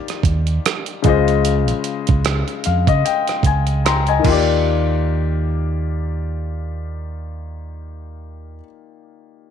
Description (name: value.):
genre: R&B, neo-soul.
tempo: 75 BPM.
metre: 4/4.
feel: swing 57% on 16ths.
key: Eb major.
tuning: A4 = 441 Hz.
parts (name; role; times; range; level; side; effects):
clear concert grand piano; accompaniment; 0.0-9.5 s; Db3 to C6; -20 LUFS; left 11 dB; none.
dusty soul sampler-style drum kit; drums; 0.1-4.5 s; crash cymbal, hi-hat, kick drum, rim click; -20 LUFS; right 5 dB; none.
fingered electric bass; bass; 0.2-8.6 s; Db2 to Db3; -20 LUFS; right 2 dB; none.
room: light reverb.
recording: 1960s-style stereo.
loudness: -16 LUFS.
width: side -8 dB against mid.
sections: 0.0-4.6 A section; 4.6-7.8 B section.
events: grand piano fill 2.2-4.6.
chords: 0.0 Ebmaj9; 1.0 Dbmaj9; 4.2 Ebmaj9.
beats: 0.65 | 1.45 2.25 3.05 3.85 | 4.65 5.45 6.25 7.05.